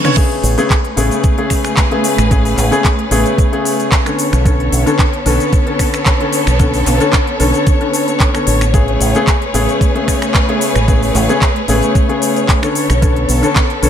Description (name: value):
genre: nu-disco, nu disco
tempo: 112 BPM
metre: 4/4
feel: swing 53% on 16ths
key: A major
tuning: A4 = 440 Hz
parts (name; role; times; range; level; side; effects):
- warm baby grand piano; accompaniment; 0.0-13.9 s; C#3 to C#5; -16 LUFS; left 2 dB; vintage 12-bit sampler grit, sidechain pumping, tape echo
- pop drum kit; drums; 0.0-13.9 s; crash cymbal, finger snaps, handclaps, hi-hat, shaker, toms; -19 LUFS; equal; none
- warm studio string section; sustained chords; 0.2-13.9 s; A3 to C#5; -19 LUFS; left 1 dB; sidechain pumping
- electronic kick drum; drums; 0.2-13.7 s; none; -13 LUFS; equal; none
- fingered electric bass with an envelope filter; bass; 0.4-13.9 s; A1 to B1; -15 LUFS; right 1 dB; sidechain pumping
room: light reverb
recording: none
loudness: -11 LUFS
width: side -9 dB against mid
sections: 0.2-13.9 A section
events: drum fill 0.0; drop 0.2-13.9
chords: 0.2 Amaj9; 4.2 Bm9; 8.7 Amaj9; 12.8 Bm9